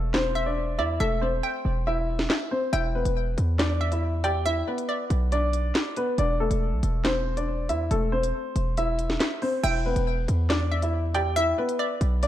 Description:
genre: hip hop, drill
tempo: 139 BPM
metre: 4/4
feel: half-time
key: E minor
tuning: A4 = 440 Hz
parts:
  - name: warm upright piano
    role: melody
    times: 0.0-12.3 s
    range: A3 to G5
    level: -28 LUFS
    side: left 1 dB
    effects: low-pass filter, ping-pong delay
  - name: hollow square pluck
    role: second line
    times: 0.0-5.7, 9.6-12.3 s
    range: D5 to G5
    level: -30 LUFS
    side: equal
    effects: chorus, ping-pong delay
  - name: hard-hitting 808-style bass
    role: bass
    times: 0.0-12.3 s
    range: E1 to E2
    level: -26 LUFS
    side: equal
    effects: none
  - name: drill drum kit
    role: drums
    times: 0.1-12.3 s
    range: crash cymbal, handclaps, hi-hat, rim click, snare drum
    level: -29 LUFS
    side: equal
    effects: vintage 12-bit sampler grit
room: moderate plate reverb, RT60 1.7 s, digital ambience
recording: dreamy mix soaked in reverb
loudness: -23 LUFS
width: side -12 dB against mid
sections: 0.0-9.6 A section; 9.6-12.3 B section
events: break 0.0-2.7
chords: 0.0 Dmadd9/E; 2.7 Em7; 7.9 Am/E; 9.6 Em7

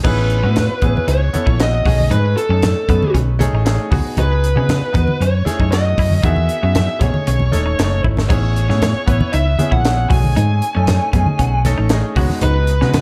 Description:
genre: electric jazz fusion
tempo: 116 BPM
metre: 4/4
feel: straight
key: unclear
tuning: A4 = 439 Hz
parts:
  - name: bluesy overdriven lead guitar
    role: melody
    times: 0.0-13.0 s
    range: A4 to G#5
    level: -23 LUFS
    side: equal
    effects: distortion
  - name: bright concert grand piano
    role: accompaniment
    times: 0.0-13.0 s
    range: D#3 to G#5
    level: -27 LUFS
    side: equal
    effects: none
  - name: clean electric guitar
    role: stabs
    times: 0.0-12.9 s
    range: B3 to F#4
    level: -30 LUFS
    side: equal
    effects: lush chorus
  - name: hollow-body short-scale fingered electric bass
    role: bass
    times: 0.0-13.0 s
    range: D#1 to C#3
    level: -19 LUFS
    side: equal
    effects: none
  - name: crisp fusion drum kit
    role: drums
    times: 0.0-13.0 s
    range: crash cymbal, hi-hat, kick drum, snare drum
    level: -22 LUFS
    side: equal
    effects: none
  - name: congas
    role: percussion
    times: 0.1-13.0 s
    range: none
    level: -24 LUFS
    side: equal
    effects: none
room: light reverb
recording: dark, warm production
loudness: -16 LUFS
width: mono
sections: 0.0-13.0 A section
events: drum fill 8.0; grand piano fill 10.9-12.4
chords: 0.0 Amaj9; 1.9 B13; 3.9 C#9sus4; 5.2 F#m9; 6.2 Emaj7; 7.0 B13; 8.3 Amaj9; 10.1 B13; 12.2 C#9sus4

